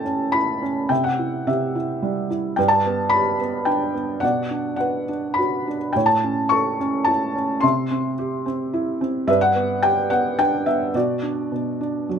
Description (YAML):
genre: classical, lyrical solo piano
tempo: 107 BPM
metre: 3/4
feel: rubato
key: unclear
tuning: A4 = 440 Hz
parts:
  - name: felt-muted upright piano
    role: solo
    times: 0.0-12.2 s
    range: G2 to C#6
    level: -19 LUFS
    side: equal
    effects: none
room: light reverb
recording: close, detailed microphones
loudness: -19 LUFS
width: side -7 dB against mid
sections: 0.0-12.2 A section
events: none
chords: 0.0 Aadd9; 0.9 C; 2.6 G; 4.2 Bm; 6.0 A; 7.6 C; 9.3 G; 10.9 Bm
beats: 0.34 | 0.90 1.47 2.03 | 2.58 3.12 3.67 | 4.23 4.80 5.37 | 5.95 6.52 7.08 | 7.63 8.19 8.74 | 9.28 9.83 10.38 | 10.94 11.51 12.11